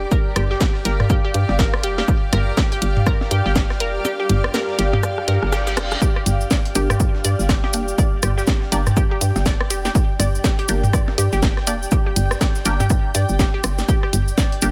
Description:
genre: minimal techno.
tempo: 122 BPM.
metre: 4/4.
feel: swing 60% on 16ths.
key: G minor.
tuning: A4 = 439 Hz.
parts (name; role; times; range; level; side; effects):
hollow knocking FM bass; bass; 0.0-14.7 s; F1 to G2; -24 LUFS; equal; sidechain pumping.
granular cloud pad; texture; 0.0-14.7 s; G4 to G5; -30 LUFS; equal; built-in reverb, sidechain pumping.
resonant blip pluck; riff; 0.1-14.7 s; G4 to D5; -30 LUFS; equal; chorus, vintage 12-bit sampler grit, sidechain pumping, delay.
breakbeat sampler-style drum kit; drums; 0.1-14.7 s; hi-hat, shaker, snare drum; -37 LUFS; equal; none.
electronic kick drum; drums; 0.1-14.5 s; none; -21 LUFS; equal; none.
garage drum kit; drums; 0.4-14.7 s; hi-hat, rim click, snare drum; -26 LUFS; equal; none.
minimal click drum kit; percussion; 0.4-14.7 s; percussion blips, rim click, toms; -25 LUFS; equal; none.
reverse cymbal; sound effects; 5.3-6.0 s; none; -33 LUFS; equal; none.
cabasa; percussion; 6.0-14.7 s; none; -32 LUFS; equal; none.
filtered dub chord stab; stabs; 6.8-14.7 s; Bb3 to G4; -30 LUFS; equal; phaser, dub echo.
room: light reverb.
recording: none.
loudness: -19 LUFS.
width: mono.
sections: 0.0-14.7 A section.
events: kick drops out 4.0-6.0; drum fill 5.0-6.0; reverse cymbal 5.3-6.0.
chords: 0.0 Gm.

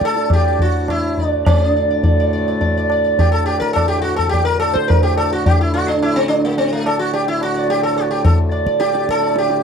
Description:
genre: indian classical, Hindustani.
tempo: 106 BPM.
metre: 4/4.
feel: straight.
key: D major.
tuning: A4 = 439 Hz.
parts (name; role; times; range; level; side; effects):
sitar; melody; 0.0-9.6 s; A3 to D5; -17 LUFS; right 1 dB; none.
hand-pumped harmonium; drone; 0.0-9.6 s; D2 to A2; -23 LUFS; equal; none.
tabla; percussion; 0.0-9.6 s; none; -18 LUFS; equal; none.
room: little or no reverb.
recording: dry, close 1970s-style studio recording.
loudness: -14 LUFS.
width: side -6 dB against mid.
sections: 0.0-1.5 A section; 1.5-9.6 B section.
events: speeding up 0.0-9.6.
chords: none.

